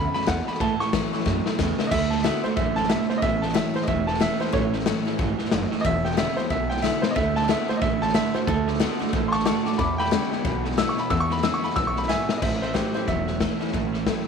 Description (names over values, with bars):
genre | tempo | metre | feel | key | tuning
rockabilly | 183 BPM | 4/4 | swing 60% on 8ths | A major | A4 = 439 Hz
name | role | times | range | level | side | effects
clear upright piano | melody | 0.0-13.7 s | G4 to E6 | -27 LUFS | right 2 dB | tape echo
picked steel-string acoustic guitar | accompaniment | 0.0-14.3 s | E2 to F#4 | -30 LUFS | left 12 dB | none
electric guitar through a small old amp | riff | 0.0-14.2 s | E2 to B3 | -28 LUFS | right 18 dB | none
upright bass | bass | 0.0-14.1 s | E1 to A2 | -30 LUFS | right 1 dB | none
raw garage drum kit | drums | 0.1-14.2 s | crash cymbal, hi-hat, kick drum, snare drum | -26 LUFS | left 5 dB | none
room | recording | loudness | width
studio reverb | 1960s-style stereo with parts hard left and right | -21 LUFS | side -6 dB against mid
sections
0.0-1.9 A section; 1.9-12.4 B section; 12.4-14.3 A section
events
drum fill 1.3-1.9, 6.8-7.2, 12.1-12.4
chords
0.0 E7; 0.6 A; 1.9 D; 3.2 A; 5.8 E7; 7.2 D; 9.8 E7; 12.4 A